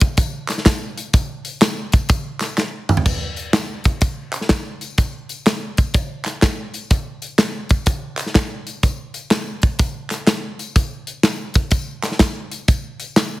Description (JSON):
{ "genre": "gospel", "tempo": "125 BPM", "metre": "4/4", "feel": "swing 65% on 8ths", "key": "none", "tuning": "none", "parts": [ { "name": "modern studio drum kit", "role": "drums", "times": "0.0-13.3 s", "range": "crash cymbal, hi-hat, kick drum, snare drum, toms", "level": "-17 LUFS", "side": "equal", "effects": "none" }, { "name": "tambourine and handclaps", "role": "percussion", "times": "0.0-13.3 s", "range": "none", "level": "-28 LUFS", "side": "equal", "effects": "none" } ], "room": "light reverb", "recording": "heavily compressed radio sound, multiband compression", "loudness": "-17 LUFS", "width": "side -18 dB against mid", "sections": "0.0-3.1 A section; 3.1-13.4 B section", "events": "drum fill 2.6-3.1", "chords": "none" }